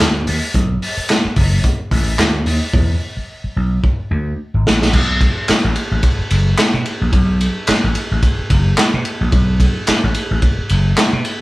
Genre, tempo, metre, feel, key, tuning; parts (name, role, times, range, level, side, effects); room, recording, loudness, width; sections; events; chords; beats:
funk; 109 BPM; 4/4; swing 56% on 16ths; A4 = 443 Hz
vintage slap bass; bass; 0.0-11.2 s; F#1 to B2; -17 LUFS; equal
crunchy breakbeat drum kit; drums; 0.0-11.4 s; crash cymbal, handclaps, hi-hat, kick drum, ride cymbal, snare drum; -15 LUFS; equal
light reverb; band playing live in one room; -13 LUFS; side -19 dB against mid
0.0-4.9 A section; 4.9-11.4 B section
drum fill 2.7-4.9
0.00 | 0.55 1.09 1.64 2.19 | 2.74 3.29 3.83 4.38 | 4.93 5.48 6.03 6.58 | 7.13 7.68 8.23 8.78 | 9.33 9.88 10.43 10.97